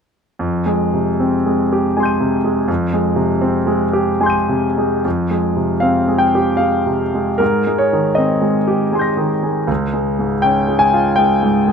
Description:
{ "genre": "classical, impressionist solo piano", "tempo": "77 BPM", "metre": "3/4", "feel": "uneven beats, rubato", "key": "F minor", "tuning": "A4 = 440 Hz", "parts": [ { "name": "bright concert grand piano", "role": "solo", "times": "0.4-11.7 s", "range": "Db2 to Eb7", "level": "-14 LUFS", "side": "equal", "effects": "none" } ], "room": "light reverb", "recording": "none", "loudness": "-14 LUFS", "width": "side -6 dB against mid", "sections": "0.4-5.0 A section; 5.0-11.7 B section", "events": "none", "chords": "0.4 Fm9; 5.0 Fmadd9; 7.4 Abmaj9; 9.7 Db" }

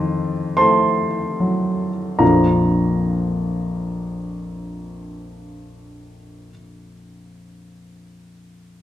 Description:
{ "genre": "classical, romantic nocturne for solo piano", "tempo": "39 BPM", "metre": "4/4", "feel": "rubato", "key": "Bb major", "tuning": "A4 = 440 Hz", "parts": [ { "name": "warm baby grand piano", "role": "solo", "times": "0.0-8.8 s", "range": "Bb1 to C6", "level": "-18 LUFS", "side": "equal", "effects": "none" } ], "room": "wet recital hall reverb, RT60 1.7 s", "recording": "dark, warm production", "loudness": "-17 LUFS", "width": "side -12 dB against mid", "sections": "0.0-2.2 A section; 2.2-8.4 B section", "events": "slowing down 0.0-2.2", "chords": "0.0 F7b9; 2.2 Bb" }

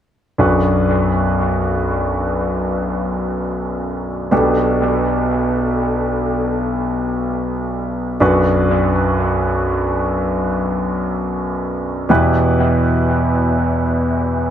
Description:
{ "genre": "pop", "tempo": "free time", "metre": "none", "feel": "none", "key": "B minor", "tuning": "A4 = 440 Hz", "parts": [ { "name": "clear concert grand piano", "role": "accompaniment", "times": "0.4-14.5 s", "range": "B1 to B4", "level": "-15 LUFS", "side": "equal", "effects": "dub echo" } ], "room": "moderate echo chamber reverb, RT60 1.6 s", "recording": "echo-heavy mix", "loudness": "-15 LUFS", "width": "side -9 dB against mid", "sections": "0.4-14.5 A section", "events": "none", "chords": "0.4 Bm; 4.3 Gadd9/B; 8.2 Bm; 12.1 Em" }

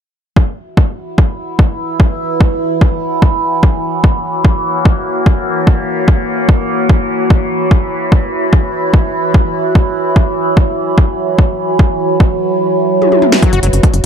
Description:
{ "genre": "psychedelic trance", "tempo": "147 BPM", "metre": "4/4", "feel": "straight", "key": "unclear", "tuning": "A4 = 440 Hz", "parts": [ { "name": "overtone-sweeping drone", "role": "sustained chords", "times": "1.1-14.1 s", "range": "E3 to E4", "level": "-17 LUFS", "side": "right 1 dB", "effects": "chorus, built-in reverb, phaser, sidechain pumping" }, { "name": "electronic kick drum", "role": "drums", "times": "0.4-13.9 s", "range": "none", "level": "-9 LUFS", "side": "equal", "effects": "none" }, { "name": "warbly tape-like pad", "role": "texture", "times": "1.0-14.1 s", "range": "F#4 to B5", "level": "-19 LUFS", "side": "right 1 dB", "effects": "chorus, built-in reverb, sidechain pumping" }, { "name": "techno drum kit", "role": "drums", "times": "13.0-14.0 s", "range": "hi-hat, snare drum, toms", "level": "-13 LUFS", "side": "left 2 dB", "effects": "none" }, { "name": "overdriven acid bass", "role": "riff", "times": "13.4-13.7 s", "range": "F#3 to F#4", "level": "-19 LUFS", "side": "left 5 dB", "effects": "auto-pan, sidechain pumping, dub echo" }, { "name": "tight sequencer bass", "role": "bass", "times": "13.5-14.0 s", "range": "F#1", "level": "-12 LUFS", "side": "equal", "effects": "none" } ], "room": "light reverb", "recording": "dark, warm production", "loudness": "-10 LUFS", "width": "side -8 dB against mid", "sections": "0.4-14.1 A section", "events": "kick drops out 12.6-13.4; drum fill 13.0-13.4", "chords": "0.4 F#5" }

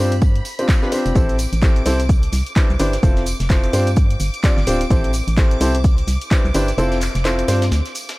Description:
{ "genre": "piano house", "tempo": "128 BPM", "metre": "4/4", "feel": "swing 59% on 16ths", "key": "C major", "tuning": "A4 = 438 Hz", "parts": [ { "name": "string machine, violins", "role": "sustained chords", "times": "0.0-8.2 s", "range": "B5 to D6", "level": "-32 LUFS", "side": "equal", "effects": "ensemble chorus, sidechain pumping" }, { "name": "clear upright piano", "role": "riff", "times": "0.0-7.6 s", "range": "C4 to D5", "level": "-21 LUFS", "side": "equal", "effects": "sidechain pumping, dub echo" }, { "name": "organ-like FM bass", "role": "bass", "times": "0.0-7.8 s", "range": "D1 to G2", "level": "-20 LUFS", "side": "equal", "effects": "sidechain pumping" }, { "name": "punchy analog drum machine", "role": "drums", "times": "0.1-8.2 s", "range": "handclaps, hi-hat, shaker", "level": "-28 LUFS", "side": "equal", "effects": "none" }, { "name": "tambourine", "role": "percussion", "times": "0.1-8.2 s", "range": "none", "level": "-36 LUFS", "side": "right 4 dB", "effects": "none" }, { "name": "breakbeat sampler-style drum kit", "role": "drums", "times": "0.2-8.2 s", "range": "hi-hat, snare drum", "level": "-36 LUFS", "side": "right 1 dB", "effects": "none" }, { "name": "electronic kick drum", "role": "drums", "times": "0.2-6.4 s", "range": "none", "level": "-15 LUFS", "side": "equal", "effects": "overdrive" } ], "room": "little or no reverb", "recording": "dark, warm production", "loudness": "-15 LUFS", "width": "side -21 dB against mid", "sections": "0.0-8.2 A section", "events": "break 6.8-8.2", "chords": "0.0 G7sus4; 1.2 Am7; 2.1 Cmaj9; 3.0 Fmaj7; 3.7 G7sus4; 4.9 Am7; 5.8 Cmaj9; 6.8 Fmaj7; 7.5 G7sus4" }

